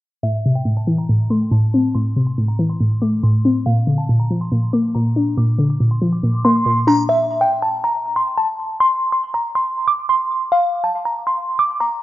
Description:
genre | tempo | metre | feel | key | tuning
hip hop | 140 BPM | 4/4 | half-time | A phrygian | A4 = 441 Hz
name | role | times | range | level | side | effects
delicate synth tine bell | melody | 0.2-12.0 s | E5 to D6 | -18 LUFS | equal | chorus, phaser, low-pass filter, analog delay
warbly dusty pluck | accompaniment | 0.2-7.1 s | A2 to D4 | -15 LUFS | equal | chorus
room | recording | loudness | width
light reverb | dry, gritty hardware recording, low-pass filter | -15 LUFS | side -15 dB against mid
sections
0.2-7.1 A section; 7.1-12.0 B section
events
filter sweep 0.2-7.1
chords
0.2 Am; 3.7 Bb; 7.1 N.C.

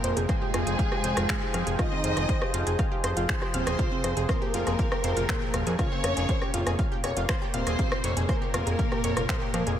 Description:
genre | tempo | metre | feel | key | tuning
melodic techno | 120 BPM | 4/4 | straight | F minor | A4 = 439 Hz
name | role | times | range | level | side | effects
soft supersaw | melody | 0.0-9.7 s | Ab2 to Eb4 | -34 LUFS | equal | ensemble chorus, sidechain pumping, analog delay
warm symphonic violin section | second line | 0.0-9.7 s | Ab4 to Eb5 | -34 LUFS | equal | sidechain pumping, analog delay
warm analog pad | sustained chords | 0.0-9.8 s | Bb2 to G5 | -35 LUFS | equal | chorus, sidechain pumping
wide unison pluck | arpeggios | 0.0-9.7 s | C4 to F6 | -33 LUFS | right 1 dB | cassette tape, sidechain pumping, analog delay
fat analog bass | bass | 0.0-9.8 s | Eb1 to F2 | -29 LUFS | equal | sidechain pumping
house drum kit | drums | 0.0-9.8 s | finger snaps, hi-hat, rim click | -33 LUFS | equal | overdrive
downlifter | sound effects | 0.0-1.8 s | none | barely audible | none | none
electronic kick drum | drums | 0.3-9.4 s | none | -30 LUFS | equal | overdrive
room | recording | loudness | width
moderate lush hall reverb, RT60 2.0 s | dreamy mix soaked in reverb | -24 LUFS | side -10 dB against mid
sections
0.0-9.8 A section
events
none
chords
0.0 Fmadd9; 5.8 Bbmadd9

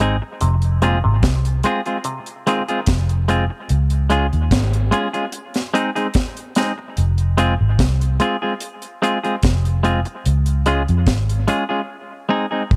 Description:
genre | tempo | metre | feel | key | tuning
dub reggae | 73 BPM | 4/4 | straight | F minor | A4 = 440 Hz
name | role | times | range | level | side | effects
semi-hollow electric guitar | accompaniment | 0.0-12.6 s | Ab3 to Ab4 | -23 LUFS | equal | dub echo
vintage muted fingered electric bass | bass | 0.0-12.8 s | F1 to F2 | -19 LUFS | equal | none
deep reggae drum kit | drums | 0.0-12.8 s | hi-hat, kick drum, snare drum | -23 LUFS | equal | none
muted clav | arpeggios | 0.4-2.6 s | Bb2 to Eb3 | -31 LUFS | equal | overdrive, dub echo
room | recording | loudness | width
light reverb, studio ambience | none | -19 LUFS | mono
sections
0.0-12.8 A section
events
drum fill 11.9-12.8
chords
0.4 Fm; 3.7 Db; 5.3 Ab; 7.0 Fm; 10.2 Db; 11.9 Ab

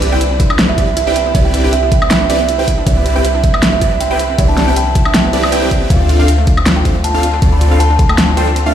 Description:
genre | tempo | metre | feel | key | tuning
future bass | 158 BPM | 4/4 | swing 54% on 16ths, half-time | C major | A4 = 440 Hz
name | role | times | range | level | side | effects
clear symphonic string section | sustained chords | 0.0-8.7 s | D3 to B4 | -25 LUFS | left 2 dB | sidechain pumping
wide unison pluck | arpeggios | 0.0-8.7 s | C5 to G5 | -28 LUFS | equal | sidechain pumping
wide unison pluck | arpeggios | 0.0-8.7 s | A3 to F4 | -24 LUFS | right 2 dB | sidechain pumping, ping-pong delay
supersaw chords | riff | 0.0-8.7 s | C4 to G5 | -20 LUFS | right 1 dB | phaser, sidechain pumping, ping-pong delay
warm 808-style bass | bass | 0.0-8.7 s | C2 to D2 | -16 LUFS | equal | sidechain pumping
pop drum kit | drums | 0.0-8.6 s | hi-hat, snare drum, woodblock | -16 LUFS | left 1 dB | overdrive
kalimba | melody | 0.1-8.7 s | C5 to B5 | -18 LUFS | right 3 dB | sidechain pumping, ping-pong delay
electronic kick drum | drums | 0.4-8.1 s | none | -13 LUFS | equal | overdrive
room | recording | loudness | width
digital ambience | played on a big sound system in a bare room, stone room reverb | -10 LUFS | side -10 dB against mid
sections
0.0-8.7 A section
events
none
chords
0.0 Cmaj9; 5.9 Dm7

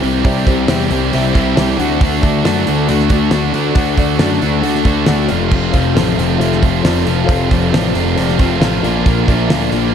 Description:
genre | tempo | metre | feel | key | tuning
classic rock | 136 BPM | 4/4 | straight | unclear | A4 = 439 Hz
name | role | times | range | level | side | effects
warm upright piano | accompaniment | 0.0-9.9 s | E4 to A5 | -23 LUFS | left 3 dB | slapback echo
string machine, violas | sustained chords | 0.0-9.9 s | C4 to D5 | -24 LUFS | right 1 dB | ensemble chorus
sludgy distorted guitar | riff | 0.0-9.9 s | F2 to D4 | -18 LUFS | left 8 dB | overdrive
tight distorted guitar | riff | 0.0-9.9 s | F2 to G4 | -19 LUFS | right 12 dB | distortion, slapback echo
fuzz picked electric bass | bass | 0.0-9.9 s | F1 to F#2 | -19 LUFS | right 1 dB | overdrive
damped 70s drum kit | drums | 0.0-9.8 s | crash cymbal, hi-hat, kick drum, snare drum | -17 LUFS | right 1 dB | none
room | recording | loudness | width
moderate lush hall reverb, RT60 1.9 s, small room ambience | big arena sound | -12 LUFS | side -8 dB against mid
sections
0.0-9.9 A section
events
upright piano fill 1.3-2.0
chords
0.0 Csus2; 1.8 D; 5.3 F; 8.8 Bb

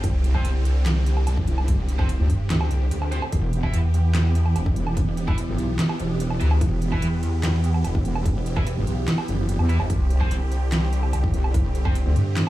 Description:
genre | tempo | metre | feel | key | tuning
heavy wobble dubstep | 146 BPM | 4/4 | half-time | E minor | A4 = 442 Hz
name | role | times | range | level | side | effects
supersaw chords | sustained chords | 0.0-12.5 s | D3 to G4 | -30 LUFS | right 2 dB | phaser, sidechain pumping
pulsing pluck wobble bass | bass | 0.0-12.3 s | E1 to G2 | -22 LUFS | equal | chorus, overdrive
wobble bass | bass | 0.0-12.1 s | E1 to E2 | -22 LUFS | equal | chorus, overdrive
dubstep drum kit | drums | 0.0-12.5 s | handclaps, hi-hat, snare drum, woodblock | -28 LUFS | equal | none
electronic kick drum | drums | 0.0-11.9 s | none | -25 LUFS | equal | none
sludgy distorted guitar | stabs | 0.3-11.9 s | C4 to E5 | -36 LUFS | right 2 dB | overdrive, dub echo
room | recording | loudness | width
digital ambience | small room ambience | -20 LUFS | side -16 dB against mid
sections
0.0-12.5 A section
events
none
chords
0.0 Csus2; 3.3 Em; 9.9 Csus2

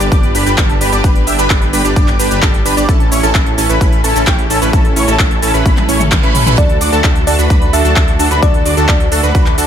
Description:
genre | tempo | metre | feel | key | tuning
EDM, festival progressive house | 130 BPM | 4/4 | straight | D major | A4 = 442 Hz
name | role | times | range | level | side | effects
clear symphonic string section | sustained chords | 0.0-9.7 s | C#3 to B4 | -24 LUFS | left 1 dB | none
plucky unison lead | arpeggios | 0.0-9.7 s | G5 to E6 | -20 LUFS | equal | ensemble chorus, sidechain pumping, ping-pong delay
supersaw stab | riff | 0.0-9.7 s | C#4 to E5 | -16 LUFS | right 2 dB | sidechain pumping, ping-pong delay
wide detuned saw bass | bass | 0.0-9.7 s | G1 to D2 | -17 LUFS | equal | chorus, sidechain pumping
big-room dance drum kit | drums | 0.0-9.7 s | handclaps, hi-hat, shaker, toms | -18 LUFS | left 1 dB | none
electronic kick drum | drums | 0.1-9.4 s | none | -12 LUFS | equal | none
reverse cymbal | sound effects | 5.9-6.6 s | none | -24 LUFS | right 6 dB | none
thumb-piano-like synth pluck | melody | 6.6-9.7 s | D5 to E5 | -20 LUFS | right 1 dB | chorus, phaser, cassette tape, ping-pong delay
room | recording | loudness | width
digital ambience | none | -9 LUFS | side -9 dB against mid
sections
0.0-9.7 A section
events
drum fill 5.7-6.6; reverse cymbal 5.9-6.6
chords
0.0 G; 2.9 A; 6.6 D

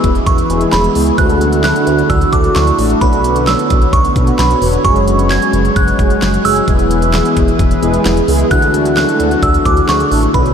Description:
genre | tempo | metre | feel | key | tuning
synth-pop | 131 BPM | 4/4 | straight | unclear | A4 = 439 Hz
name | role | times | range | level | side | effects
glassy synth bell | melody | 0.0-10.5 s | B5 to G#6 | -16 LUFS | right 2 dB | chorus, ping-pong delay
mellow synth brass | accompaniment | 0.0-10.5 s | G#3 to B4 | -16 LUFS | equal | chorus
chorused pulse-width pad | sustained chords | 0.0-10.5 s | D3 to C#5 | -17 LUFS | left 1 dB | none
chorused synth bass | bass | 0.0-10.5 s | E1 to D2 | -17 LUFS | equal | none
pop drum kit | drums | 0.0-10.5 s | handclaps, hi-hat, kick drum, snare drum | -17 LUFS | equal | none
room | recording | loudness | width
wet huge ambient reverb, RT60 8.8 s | dreamy mix soaked in reverb | -10 LUFS | side -7 dB against mid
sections
0.0-10.5 A section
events
none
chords
0.0 E; 1.2 Dadd9; 3.0 Bmadd9; 4.8 F#sus2; 6.7 E; 8.5 Dadd9

